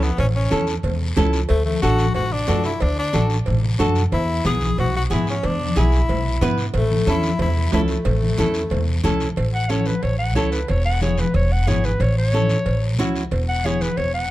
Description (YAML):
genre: latin, cumbia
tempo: 183 BPM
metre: 4/4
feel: straight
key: A major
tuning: A4 = 440 Hz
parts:
  - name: edgy tenor saxophone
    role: second line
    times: 0.0-9.0 s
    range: A3 to G#4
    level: -25 LUFS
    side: left 3 dB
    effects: none
  - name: flamenco guitar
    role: accompaniment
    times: 0.0-13.9 s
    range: B3 to B4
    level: -25 LUFS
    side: right 2 dB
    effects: none
  - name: upright bass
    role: bass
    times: 0.0-14.3 s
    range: E1 to G#2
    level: -20 LUFS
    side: equal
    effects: none
  - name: guiro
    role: percussion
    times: 0.0-14.3 s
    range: none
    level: -34 LUFS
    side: left 3 dB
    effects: none
  - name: congas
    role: percussion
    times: 0.2-14.0 s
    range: none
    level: -27 LUFS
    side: left 2 dB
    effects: none
  - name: cowbell and timbales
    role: percussion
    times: 0.2-14.1 s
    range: none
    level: -30 LUFS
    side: right 4 dB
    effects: none
  - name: warm clarinet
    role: melody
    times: 9.5-14.3 s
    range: B4 to F#5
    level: -24 LUFS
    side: left 1 dB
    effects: none
room: little or no reverb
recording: dark, warm production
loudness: -18 LUFS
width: side -15 dB against mid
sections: 0.0-9.4 A section; 9.4-14.3 B section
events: tenor saxophone solo 0.0-9.4; clarinet solo 9.4-14.3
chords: 0.0 A; 1.5 D; 4.1 E; 6.7 A; 10.7 E; 12.0 A; 13.3 E